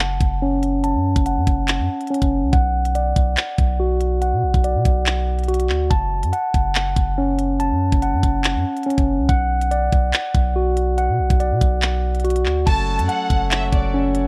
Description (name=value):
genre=hip hop, drill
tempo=142 BPM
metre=4/4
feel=half-time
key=F# minor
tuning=A4 = 441 Hz
part: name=mellow tine electric piano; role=arpeggios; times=0.0-14.3 s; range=C#4 to A5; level=-24 LUFS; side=equal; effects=low-pass filter, delay
part: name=long sustained 808-style bass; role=bass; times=0.0-14.3 s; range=F#1 to B2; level=-23 LUFS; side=equal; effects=none
part: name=drill drum kit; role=drums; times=0.2-14.3 s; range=crash cymbal, handclaps, hi-hat, kick drum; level=-22 LUFS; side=equal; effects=none
part: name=clear symphonic violin section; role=second line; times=12.7-13.9 s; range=D5 to A5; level=-29 LUFS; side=equal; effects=delay
part: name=pipe organ, principal chorus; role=sustained chords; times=12.7-14.3 s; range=F#3 to C#4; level=-30 LUFS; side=equal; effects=none
room=little or no reverb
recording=worn, warbling old tape, cassette tape, warbly pitch drift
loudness=-19 LUFS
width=mono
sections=0.0-12.7 A section; 12.7-14.3 B section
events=filter sweep on tine electric piano 0.0-5.9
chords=0.0 F#m; 2.5 Bm; 5.9 F#m; 9.3 Bm; 12.7 F#m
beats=0.41 | 0.84 1.26 1.68 2.11 | 2.53 2.95 3.37 3.80 | 4.22 4.64 5.06 5.49 | 5.91 6.33 6.75 7.18 | 7.60 8.02 8.44 8.87 | 9.29 9.71 10.13 10.56 | 10.98 11.40 11.82 12.25 | 12.67 13.09 13.51 13.94